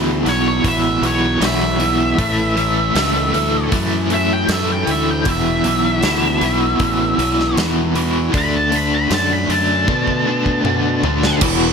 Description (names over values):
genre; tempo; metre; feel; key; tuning
blues rock power trio and southern rock; 78 BPM; 4/4; straight; unclear; A4 = 440 Hz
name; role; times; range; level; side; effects
biting overdriven guitar; riff; 0.0-11.7 s; E2 to D4; -18 LUFS; equal; tremolo
fuzz fingered electric bass; bass; 0.0-11.7 s; E1 to B2; -21 LUFS; equal; overdrive
octave-fuzz lead guitar; melody; 0.3-11.4 s; C#5 to B5; -20 LUFS; equal; wah, distortion
big rock drum kit; drums; 0.3-11.6 s; crash cymbal, hi-hat, kick drum, snare drum, toms; -23 LUFS; equal; none
room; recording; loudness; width
small room ambience; none; -14 LUFS; side -6 dB against mid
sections
0.0-11.4 A section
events
drum fill 9.9-11.4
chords
0.0 E5; 2.2 A5; 5.3 E5; 8.3 D